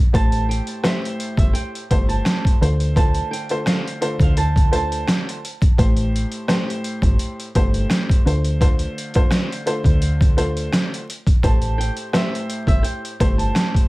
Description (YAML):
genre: hip hop, boom-bap hip-hop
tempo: 85 BPM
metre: 4/4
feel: swing 54% on 16ths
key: A minor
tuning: A4 = 440 Hz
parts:
  - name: warm upright piano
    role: accompaniment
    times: 0.1-13.9 s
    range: A2 to C5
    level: -25 LUFS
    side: left 1 dB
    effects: cassette tape, high-pass filter, low-pass filter, plate reverb
  - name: deep dub fingered electric bass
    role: bass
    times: 0.1-13.5 s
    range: G1 to D2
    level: -20 LUFS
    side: equal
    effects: none
  - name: trip hop sampler-style drum kit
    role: drums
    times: 0.1-13.9 s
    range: hi-hat, kick drum, rim click, snare drum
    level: -18 LUFS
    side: equal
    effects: none
  - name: flamenco guitar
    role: melody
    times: 0.2-5.1, 11.4-13.9 s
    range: E5 to A5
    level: -28 LUFS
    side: right 4 dB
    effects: high-pass filter, low-pass filter, plate reverb, tape echo
room: light reverb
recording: vinyl crackle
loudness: -17 LUFS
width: side -20 dB against mid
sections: 0.1-13.9 A section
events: none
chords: 0.1 Am7; 2.6 Dm7; 5.8 Am7; 8.3 Dm7; 11.4 Am7